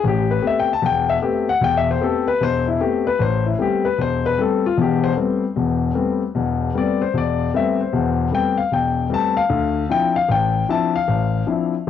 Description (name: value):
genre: solo jazz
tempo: 152 BPM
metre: 4/4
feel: swing 64% on 8ths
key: A minor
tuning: A4 = 440 Hz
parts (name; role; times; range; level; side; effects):
- warm concert grand piano; solo; 0.0-11.9 s; E1 to A5; -17 LUFS; left 5 dB; cassette tape
room: light reverb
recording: home recording on cassette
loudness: -17 LUFS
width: side -9 dB against mid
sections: 0.0-3.2 A section; 3.2-11.9 A section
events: grand piano solo 0.0-11.9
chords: 0.0 Am9; 9.5 Dm9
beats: | 0.03 0.42 0.82 1.21 | 1.60 2.00 2.39 2.79 | 3.18 3.58 3.97 4.37 | 4.76 5.15 5.55 5.94 | 6.34 6.73 7.13 7.52 | 7.92 8.31 8.70 9.10 | 9.49 9.89 10.28 10.68 | 11.07 11.46 11.86